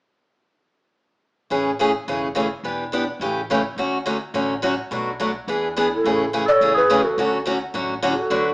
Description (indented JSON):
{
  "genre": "acoustic string swing (jazz manouche)",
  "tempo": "212 BPM",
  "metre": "4/4",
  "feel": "swing 57% on 8ths",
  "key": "A major",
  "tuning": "A4 = 440 Hz",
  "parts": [
    { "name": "picked steel-string acoustic guitar", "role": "accompaniment", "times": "1.5-8.5 s", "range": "B2 to B4", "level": "-20 LUFS", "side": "equal", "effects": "none" },
    { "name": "upright bass", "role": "bass", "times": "1.5-8.5 s", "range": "E1 to E2", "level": "-39 LUFS", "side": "equal", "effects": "none" },
    { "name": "growling clarinet", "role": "second line", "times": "5.9-8.5 s", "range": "E4 to A4", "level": "-22 LUFS", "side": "equal", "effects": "none" },
    { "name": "breathy mellow shakuhachi", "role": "melody", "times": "6.0-8.5 s", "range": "G#4 to D5", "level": "-20 LUFS", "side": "equal", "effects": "none" }
  ],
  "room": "moderate large studio reverb, RT60 0.9 s",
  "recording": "band playing live in one room, small speaker sound",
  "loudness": "-19 LUFS",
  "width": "side -26 dB against mid",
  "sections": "1.5-6.0 A section; 6.0-8.5 B section",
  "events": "none",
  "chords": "1.5 Amaj7; 2.6 Em7; 3.2 A7; 3.8 Dmaj7; 4.9 Bm7; 5.5 E7; 6.0 Amaj7; 7.2 Dmaj7"
}